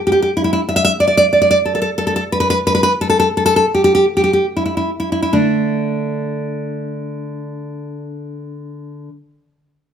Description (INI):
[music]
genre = romantic piece for solo classical guitar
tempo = 63-99 BPM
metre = 3/4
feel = rubato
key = unclear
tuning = A4 = 440 Hz
[part]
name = nylon-string guitar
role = solo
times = 0.1-9.1 s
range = D3 to E5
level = -14 LUFS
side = equal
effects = none
[sound]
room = light reverb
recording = close, detailed microphones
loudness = -13 LUFS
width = side -8 dB against mid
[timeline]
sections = 0.0-5.3 A section; 5.3-9.9 B section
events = slowing down 0.0-5.3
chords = 0.0 N.C.; 5.3 D5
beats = 0.29 | 0.91 1.56 2.22 | 2.92 3.65 4.46 | 5.35 6.18 7.03 | 7.86 8.69